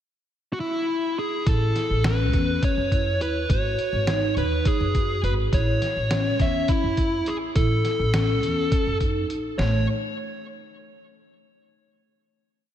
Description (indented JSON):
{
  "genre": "progressive instrumental, band music in an uneven meter",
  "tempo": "207 BPM (eighths)",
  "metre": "7/8",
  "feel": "straight",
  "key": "A lydian",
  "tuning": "A4 = 440 Hz",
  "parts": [
    { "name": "dark smooth lead guitar", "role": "melody", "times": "0.5-9.9 s", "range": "E4 to E5", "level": "-26 LUFS", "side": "equal", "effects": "overdrive, ping-pong delay" },
    { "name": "vibraphone with soft mallets", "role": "arpeggios", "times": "1.5-9.9 s", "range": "A3 to F#4", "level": "-29 LUFS", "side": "equal", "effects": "none" },
    { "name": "upright bass", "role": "bass", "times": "1.5-9.9 s", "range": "G#1 to F#2", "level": "-25 LUFS", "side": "equal", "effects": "none" },
    { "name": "lo-fi sampler-style drum kit", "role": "drums", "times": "1.5-9.7 s", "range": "hi-hat, kick drum, snare drum", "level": "-25 LUFS", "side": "equal", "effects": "none" }
  ],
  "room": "moderate lush hall reverb, RT60 2.8 s",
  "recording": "dreamy mix soaked in reverb",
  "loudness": "-21 LUFS",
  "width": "side -10 dB against mid",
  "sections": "0.0-1.5 pickup bar; 1.5-9.6 A section; 9.6-11.6 final chord",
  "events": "none",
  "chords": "0.0 N.C.; 1.5 Aadd9; 3.5 G#5; 5.5 A; 7.6 A5; 9.6 N.C."
}